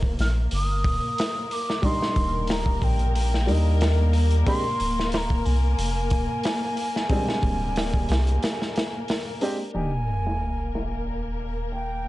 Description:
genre	trip hop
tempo	91 BPM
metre	4/4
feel	straight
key	unclear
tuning	A4 = 440 Hz
part	rich studio string section	sustained chords	0.0-12.1 s	Bb3 to Bb4	-32 LUFS	left 3 dB	vintage 12-bit sampler grit, low-pass filter
part	round analog bass	bass	0.0-12.1 s	D1 to Eb2	-24 LUFS	equal	none
part	crunchy breakbeat drum kit	drums	0.0-12.1 s	hi-hat, kick drum, snare drum	-27 LUFS	equal	low-pass filter on kick, low-pass filter on hats, low-pass filter on snare, low-pass filter on room
part	wooden flute	melody	0.2-12.1 s	G5 to F6	-30 LUFS	right 1 dB	tape echo
part	felt-muted upright piano	accompaniment	1.8-9.9 s	G3 to G4	-30 LUFS	equal	harmonic tremolo, tape echo
part	sub drop	sound effects	9.7-12.1 s	none	-31 LUFS	equal	none
room	small room ambience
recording	dark, warm production, nothing above 10.9 kHz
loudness	-22 LUFS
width	side -17 dB against mid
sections	0.0-9.7 A section; 9.7-12.1 B section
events	break 8.4-9.7; impact 9.7-12.1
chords	0.0 Ebmaj7; 4.5 Bb13/D; 9.7 Eb5

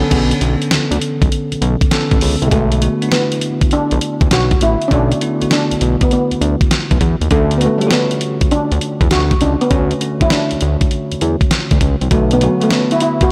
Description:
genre	R&B, new jack swing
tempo	100 BPM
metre	4/4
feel	swing 67% on 16ths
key	B minor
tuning	A4 = 439 Hz
part	bell-like tine electric piano	accompaniment	0.0-13.3 s	D3 to C#5	-22 LUFS	equal	none
part	fat analog bass	bass	0.0-12.5 s	A1 to E2	-18 LUFS	equal	none
part	dusty soul sampler-style drum kit	drums	0.1-13.3 s	crash cymbal, hi-hat, kick drum, snare drum	-18 LUFS	equal	none
part	steel pan	melody	2.5-13.3 s	F#3 to F#4	-20 LUFS	equal	slapback echo, digital delay
room	moderate lush hall reverb, RT60 1.9 s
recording	big arena sound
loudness	-15 LUFS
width	mono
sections	0.1-2.5 A section; 2.5-13.3 B section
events	none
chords	0.1 Bm9; 2.5 Bm7; 7.3 Dmaj7; 12.1 Bm7

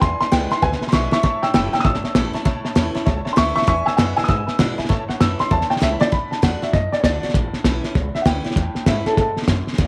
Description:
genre	rockabilly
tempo	197 BPM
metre	4/4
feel	swing 63% on 8ths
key	A major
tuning	A4 = 442 Hz
part	warm upright piano	melody	0.0-9.4 s	G#4 to E6	-23 LUFS	equal	none
part	honky-tonk upright piano	accompaniment	0.0-6.1 s	B4 to A5	-32 LUFS	equal	none
part	picked steel-string acoustic guitar	accompaniment	0.0-9.9 s	E2 to F#4	-32 LUFS	equal	none
part	upright bass	bass	0.0-9.9 s	F#1 to B2	-28 LUFS	equal	none
part	cloth-damped thuddy drum kit	drums	0.0-9.9 s	hi-hat, kick drum, snare drum	-22 LUFS	equal	none
room	moderate spring reverb, RT60 1.3 s, small room ambience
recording	none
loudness	-19 LUFS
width	mono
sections	0.0-6.1 A section; 6.1-9.9 B section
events	upright piano solo 0.0-6.1; drum fill 1.1, 5.8-6.1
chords	0.0 E7; 1.2 A; 3.7 E7; 4.9 A; 6.1 D; 7.3 A

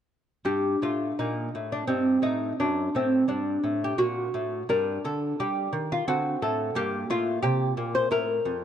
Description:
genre	classical, baroque-style dance for lute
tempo	86 BPM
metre	3/4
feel	rubato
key	G minor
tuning	A4 = 440 Hz
part	lute	solo	0.4-8.6 s	F2 to C5	-24 LUFS	equal	none
room	moderate plate reverb, RT60 3.3 s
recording	dark, warm production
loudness	-24 LUFS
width	side -9 dB against mid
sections	0.5-8.6 A section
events	none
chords	0.5 Gm; 1.9 Am7b5/G; 2.6 D7b13/F#; 4.7 G5; 6.1 D7; 6.8 Gm

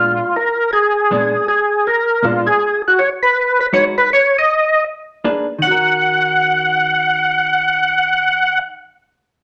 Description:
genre	jazz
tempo	160 BPM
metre	4/4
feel	swing 64% on 8ths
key	Eb minor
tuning	A4 = 439 Hz
part	percussive tonewheel organ	melody	0.0-8.6 s	F4 to Gb5	-15 LUFS	equal	slow rotary speaker, overdrive, chorus vibrato
part	hollow-body jazz guitar	accompaniment	0.0-8.7 s	Bb2 to Cb5	-24 LUFS	equal	none
room	wet studio reverb, RT60 0.8 s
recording	none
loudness	-15 LUFS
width	mono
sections	0.0-5.6 A section; 5.6-8.6 B section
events	none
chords	0.0 Bb7b9; 2.6 N.C.; 3.4 Abm7; 4.1 N.C.; 4.9 Bb7b9; 5.6 Ebm7

